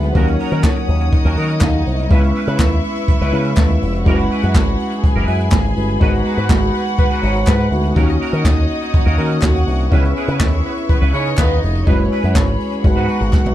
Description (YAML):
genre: disco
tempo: 123 BPM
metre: 4/4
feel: straight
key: G# minor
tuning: A4 = 440 Hz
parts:
  - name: dark studio string section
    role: second line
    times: 0.0-13.5 s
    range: B3 to G#5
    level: -24 LUFS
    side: equal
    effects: none
  - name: tine electric piano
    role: accompaniment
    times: 0.0-13.5 s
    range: F#3 to C#5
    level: -21 LUFS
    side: equal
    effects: overdrive
  - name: twangy electric guitar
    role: accompaniment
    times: 0.0-13.5 s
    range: C#4 to B4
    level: -28 LUFS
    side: right 4 dB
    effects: ensemble chorus
  - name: dark studio string section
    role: sustained chords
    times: 0.0-13.5 s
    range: G#4 to D#6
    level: -28 LUFS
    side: left 3 dB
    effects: none
  - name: picked electric bass with an envelope filter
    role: bass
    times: 0.0-13.5 s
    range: E#1 to D#3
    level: -17 LUFS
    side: equal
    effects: none
  - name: jazz brush drum kit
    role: drums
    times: 0.0-13.5 s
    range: handclaps, hi-hat, kick drum, snare drum, toms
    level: -16 LUFS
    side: equal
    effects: none
  - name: group handclap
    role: percussion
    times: 0.6-13.4 s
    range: none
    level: -33 LUFS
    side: left 2 dB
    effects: none
  - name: mellow horn section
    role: stabs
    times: 6.3-11.6 s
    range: G#3 to C#5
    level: -24 LUFS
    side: equal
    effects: none
room: light reverb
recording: dark, warm production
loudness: -13 LUFS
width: side -13 dB against mid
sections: 0.0-13.5 A section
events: drum fill 13.3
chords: 0.2 D#m7; 2.1 C#m7; 4.1 F#9sus4; 6.0 G#m7; 8.0 D#m7; 9.9 C#m7; 11.9 F#9sus4; 12.8 G#m7